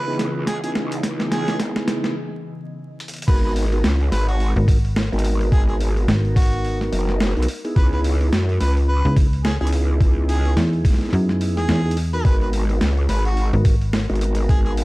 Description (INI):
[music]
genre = glitch hop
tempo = 107 BPM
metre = 4/4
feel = swing 58% on 16ths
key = G# minor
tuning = A4 = 440 Hz
[part]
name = warm harmonica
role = melody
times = 0.0-14.7 s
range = F#4 to B4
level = -30 LUFS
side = right 1 dB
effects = vintage 12-bit sampler grit, dub echo
[part]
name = warm analog pad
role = sustained chords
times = 0.0-3.2 s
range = C#3 to D#5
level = -31 LUFS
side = left 1 dB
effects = chorus, sidechain pumping
[part]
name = growl bass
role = bass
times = 0.0-14.8 s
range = F#1 to F#2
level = -20 LUFS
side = equal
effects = chorus, overdrive, high-pass filter
[part]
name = mellow tonewheel organ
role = stabs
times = 0.1-14.8 s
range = B3 to A#4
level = -27 LUFS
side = right 1 dB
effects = slow rotary speaker, sidechain pumping, dub echo
[part]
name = boom bap sampler-style drum kit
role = drums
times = 0.2-14.8 s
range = crash cymbal, hi-hat, snare drum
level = -26 LUFS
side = equal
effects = studio reverb
[part]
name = electronic kick drum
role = drums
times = 0.5-14.6 s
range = none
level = -17 LUFS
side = equal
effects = high-pass filter on kick, studio reverb
[part]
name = slap-like FM bass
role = bass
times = 4.6-14.1 s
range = G#1 to F#2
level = -19 LUFS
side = equal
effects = none
[sound]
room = little or no reverb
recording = dark, warm production, vinyl crackle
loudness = -17 LUFS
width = side -20 dB against mid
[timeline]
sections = 0.0-3.3 A section; 3.3-14.8 B section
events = build-up 0.0-3.3; drum fill 0.0-2.2, 3.0; break 2.2-3.3; drop 3.3-14.8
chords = 0.0 C#m9; 3.3 G#m9; 7.8 C#m9; 12.2 G#m9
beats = 0.47 | 1.03 1.60 2.16 2.72 | 3.28 3.84 4.40 4.96 | 5.52 6.08 6.64 7.20 | 7.76 8.32 8.88 9.45 | 10.01 10.57 11.13 11.69 | 12.25 12.81 13.37 13.93 | 14.49